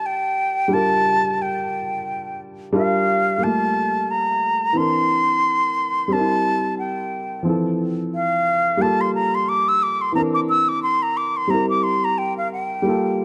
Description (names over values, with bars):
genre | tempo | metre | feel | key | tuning
soul | 89 BPM | 4/4 | swing 58% on 16ths | G dorian | A4 = 435 Hz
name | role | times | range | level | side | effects
concert flute | melody | 0.0-13.2 s | F5 to E6 | -22 LUFS | equal | none
dark baby grand piano | accompaniment | 0.0-13.2 s | E3 to Bb4 | -25 LUFS | equal | none
room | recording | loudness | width
light reverb | dark, warm production | -20 LUFS | mono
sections
0.0-3.4 A section; 3.4-13.2 B section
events
none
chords
0.0 Gm7; 3.4 Gm9; 4.8 C9; 6.1 C7; 7.5 Fmaj7; 8.8 Gm9; 10.2 C9; 11.5 C7